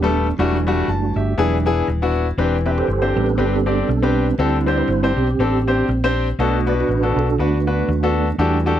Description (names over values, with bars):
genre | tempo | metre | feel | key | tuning
gospel | 120 BPM | 4/4 | swing 56% on 8ths | unclear | A4 = 437 Hz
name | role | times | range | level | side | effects
clear grand piano | accompaniment | 0.0-8.8 s | B2 to A5 | -20 LUFS | left 4 dB | none
mellow tonewheel organ | sustained chords | 0.0-8.7 s | F#3 to E5 | -21 LUFS | right 6 dB | fast rotary speaker, chorus vibrato
hollow-body short-scale fingered electric bass | bass | 0.0-8.8 s | Eb1 to E2 | -21 LUFS | equal | none
room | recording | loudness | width
light reverb | none | -16 LUFS | side -11 dB against mid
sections
0.0-8.8 A section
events
tonewheel organ solo 0.0-8.8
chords
0.4 Em11; 1.4 E7; 2.4 Am11/E; 4.4 D7sus4; 6.4 Bm7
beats
| 0.38 0.88 1.39 1.89 | 2.39 2.89 3.39 3.89 | 4.39 4.89 5.39 5.89 | 6.39 6.89 7.39 7.89 | 8.39